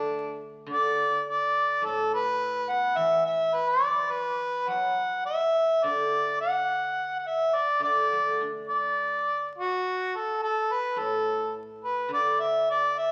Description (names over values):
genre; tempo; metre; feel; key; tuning
chinese traditional, Chinese chamber ensemble; 105 BPM; 2/4; straight; D gong mode; A4 = 437 Hz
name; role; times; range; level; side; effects
clear harmonica; melody; 0.0-13.1 s; D4 to F#5; -27 LUFS; equal; none
guzheng; accompaniment; 0.0-13.1 s; A2 to D4; -38 LUFS; equal; none
room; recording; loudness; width
wet recital hall reverb, RT60 1.6 s; very old 78 rpm record, vinyl crackle; -27 LUFS; mono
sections
0.7-9.8 A section; 9.8-13.1 B section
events
none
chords
none